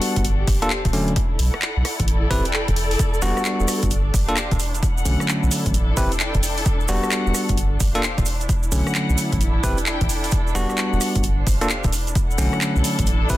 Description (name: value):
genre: UK garage, two-step garage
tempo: 131 BPM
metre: 4/4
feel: swing 64% on 16ths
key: unclear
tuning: A4 = 439 Hz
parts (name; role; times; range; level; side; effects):
- bell-like tine electric piano; stabs; 0.0-13.4 s; D3 to B4; -24 LUFS; equal; tape echo
- house drum kit; drums; 0.0-13.4 s; bongos, handclaps, hi-hat, rim click; -26 LUFS; left 1 dB; none
- dark chamber string section; texture; 0.0-13.4 s; D4 to G5; -28 LUFS; left 2 dB; sidechain pumping
- soft dub sub bass; bass; 0.2-13.4 s; D1 to B1; -21 LUFS; equal; none
- electronic kick drum; drums; 0.2-13.4 s; none; -23 LUFS; equal; none
- maracas; percussion; 3.0-13.4 s; none; -31 LUFS; right 6 dB; none
room: digital ambience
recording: dense, heavily limited modern master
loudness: -18 LUFS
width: side -15 dB against mid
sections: 0.0-13.4 A section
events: none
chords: 0.2 G7(no3); 0.9 Bm7; 2.1 Am7; 3.0 Em7; 3.9 G7(no3); 4.6 Bm7; 5.7 Am7; 6.7 Em7; 7.6 G7(no3); 8.3 Bm7; 9.4 Am7; 10.3 Em7; 11.2 G7(no3); 11.9 Bm7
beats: 0.25 0.70 | 1.16 1.62 2.08 2.54 | 3.00 3.45 3.91 4.37 | 4.83 5.29 5.74 6.20 | 6.66 7.12 7.58 8.03 | 8.49 8.95 9.41 9.87 | 10.32 10.78 11.24 11.70 | 12.15 12.61 13.07